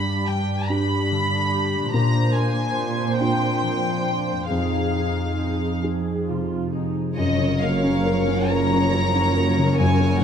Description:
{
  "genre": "cinematic, emotional film score for orchestra",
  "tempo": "46 BPM (dotted quarters)",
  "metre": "6/8",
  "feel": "uneven beats, rubato",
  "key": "unclear",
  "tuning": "A4 = 440 Hz",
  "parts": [
    { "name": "rich studio violin section", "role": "melody", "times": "0.0-10.2 s", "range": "Eb5 to B5", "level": "-27 LUFS", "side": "left 1 dB", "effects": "none" },
    { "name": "dark symphonic viola section", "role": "accompaniment", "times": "0.0-10.2 s", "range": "F3 to C5", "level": "-29 LUFS", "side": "right 1 dB", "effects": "none" },
    { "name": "warm grand piano", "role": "accompaniment", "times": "0.0-10.2 s", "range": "F2 to Bb4", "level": "-25 LUFS", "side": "equal", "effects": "none" },
    { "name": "concert harp", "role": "arpeggios", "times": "0.0-10.2 s", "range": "F2 to Db6", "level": "-27 LUFS", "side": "left 8 dB", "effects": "none" },
    { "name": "dark studio cello section", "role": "bass", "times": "0.0-10.2 s", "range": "F2 to Bb2", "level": "-26 LUFS", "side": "right 4 dB", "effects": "none" },
    { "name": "warm studio violin section", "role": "second line", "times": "7.2-10.2 s", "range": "Bb4 to Db5", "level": "-29 LUFS", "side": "right 1 dB", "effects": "none" },
    { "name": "warm studio double bass section", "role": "bass", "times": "7.2-10.2 s", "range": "Gb1", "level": "-27 LUFS", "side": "right 5 dB", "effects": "none" }
  ],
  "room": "moderate scoring stage reverb, RT60 2.2 s",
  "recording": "close, detailed microphones",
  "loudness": "-19 LUFS",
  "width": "side -8 dB against mid",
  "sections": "0.0-7.2 A section; 7.2-10.2 B section",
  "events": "none",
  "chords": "0.0 G; 1.9 Bbadd9; 4.5 Fm7; 7.2 Gbmaj7",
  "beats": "0.69 | 1.94 3.20 | 4.51 5.84 | 7.18 8.51 | 9.79"
}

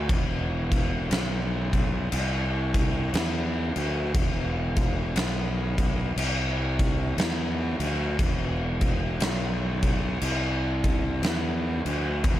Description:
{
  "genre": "stoner and doom metal",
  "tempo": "59 BPM",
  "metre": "4/4",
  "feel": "swing 62% on 8ths",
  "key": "unclear",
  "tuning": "A4 = 440 Hz",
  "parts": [
    { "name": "fuzz fingered electric bass", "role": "bass", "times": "0.0-12.4 s", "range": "E1 to E2", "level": "-27 LUFS", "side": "equal", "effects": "overdrive" },
    { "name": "oversized low-tuned drum kit", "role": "drums", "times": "0.1-12.4 s", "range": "crash cymbal, kick drum, snare drum", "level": "-26 LUFS", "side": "equal", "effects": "none" }
  ],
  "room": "little or no reverb",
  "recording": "none",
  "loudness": "-24 LUFS",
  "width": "side -13 dB against mid",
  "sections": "0.0-12.4 A section",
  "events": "none",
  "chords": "none",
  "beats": "| 0.09 1.10 2.12 3.13 | 4.14 5.15 6.17 7.18 | 8.19 9.21 10.22 11.23 | 12.25"
}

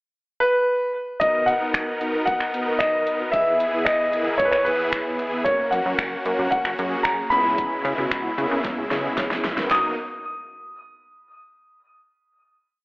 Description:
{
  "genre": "dance-pop",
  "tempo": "113 BPM",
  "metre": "4/4",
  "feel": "straight",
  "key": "B major",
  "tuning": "A4 = 440 Hz",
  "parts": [
    { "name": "bright concert grand piano", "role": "melody", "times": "0.4-10.0 s", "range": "B4 to D#6", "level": "-22 LUFS", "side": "equal", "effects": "diffuse ambient delay" },
    { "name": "mellow synth brass", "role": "accompaniment", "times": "1.2-10.0 s", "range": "A#3 to B4", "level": "-29 LUFS", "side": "equal", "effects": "chorus, sidechain pumping" },
    { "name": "supersaw chords", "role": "sustained chords", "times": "1.2-10.0 s", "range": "B2 to A#4", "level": "-28 LUFS", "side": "equal", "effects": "sidechain pumping" },
    { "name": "pop drum kit", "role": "drums", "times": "1.2-9.8 s", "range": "finger snaps, handclaps, hi-hat, kick drum, snare drum", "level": "-27 LUFS", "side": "equal", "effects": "overdrive" },
    { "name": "plucky analog bass", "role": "bass", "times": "5.5-10.0 s", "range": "F#1 to C#3", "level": "-29 LUFS", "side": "equal", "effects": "sidechain pumping" }
  ],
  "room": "wet plate reverb, RT60 1.5 s, digital ambience",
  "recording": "dreamy mix soaked in reverb, telephone sound",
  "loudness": "-20 LUFS",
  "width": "side -25 dB against mid",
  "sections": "0.0-1.2 pickup bar; 1.2-9.7 verse; 9.7-11.8 final chord",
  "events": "drum fill 8.6-9.7",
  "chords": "0.0 N.C.; 1.2 Bmaj7; 3.3 E; 5.5 F#; 7.3 C#m7; 9.7 Bmaj7",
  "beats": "0.15 0.68 | 1.21 1.74 2.27 2.80 | 3.33 3.87 4.40 4.93 | 5.46 5.99 6.52 7.05 | 7.58 8.11 8.64 9.18 | 9.71"
}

